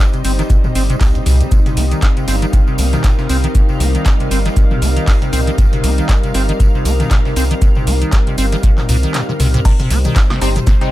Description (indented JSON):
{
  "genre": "acid house",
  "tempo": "118 BPM",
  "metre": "4/4",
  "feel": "swing 57% on 16ths",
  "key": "C minor",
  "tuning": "A4 = 440 Hz",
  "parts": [
    { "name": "string machine, full ensemble", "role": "sustained chords", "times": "0.0-10.9 s", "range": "G3 to F5", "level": "-24 LUFS", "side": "equal", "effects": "ensemble chorus, sidechain pumping" },
    { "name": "acid bass, square", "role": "riff", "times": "0.0-10.9 s", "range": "C2 to C4", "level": "-20 LUFS", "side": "equal", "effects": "wide subtle chorus, sidechain pumping" },
    { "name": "tambourine", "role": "percussion", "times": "0.0-10.9 s", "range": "none", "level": "-34 LUFS", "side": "right 5 dB", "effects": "none" },
    { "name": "airy breathy pad", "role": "texture", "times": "0.0-10.9 s", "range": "C4 to Eb5", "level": "-25 LUFS", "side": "left 2 dB", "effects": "chorus, sidechain pumping" },
    { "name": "electro analog drum machine", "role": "drums", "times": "0.1-10.9 s", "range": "cowbell, crash cymbal, handclaps, hi-hat, snare drum, toms, woodblock", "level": "-22 LUFS", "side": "left 1 dB", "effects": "none" },
    { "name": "round analog bass", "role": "bass", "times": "0.2-10.6 s", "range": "G1 to C2", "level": "-15 LUFS", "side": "equal", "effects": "tube saturation, sidechain pumping" },
    { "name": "breakbeat sampler-style drum kit", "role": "drums", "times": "0.2-10.8 s", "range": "hi-hat, shaker, snare drum", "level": "-30 LUFS", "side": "left 1 dB", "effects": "high-pass filter on perc, high-pass filter on hats, high-pass filter on snare, high-pass filter on room" },
    { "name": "electronic kick drum", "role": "drums", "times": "0.5-10.8 s", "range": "none", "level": "-13 LUFS", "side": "equal", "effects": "none" },
    { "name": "band-passed chord stab", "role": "stabs", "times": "10.4-10.9 s", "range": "G3 to Eb4", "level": "-22 LUFS", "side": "left 4 dB", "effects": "phaser, ensemble chorus, cassette tape" }
  ],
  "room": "little or no reverb",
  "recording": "none",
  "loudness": "-12 LUFS",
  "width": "side -15 dB against mid",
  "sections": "0.0-9.7 A section; 9.7-10.9 B section",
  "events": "filter sweep on acid bass 0.0-9.7; kick drops out 9.1-9.7; drum fill 9.1-9.7; drop 9.7-10.9",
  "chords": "0.0 Cm"
}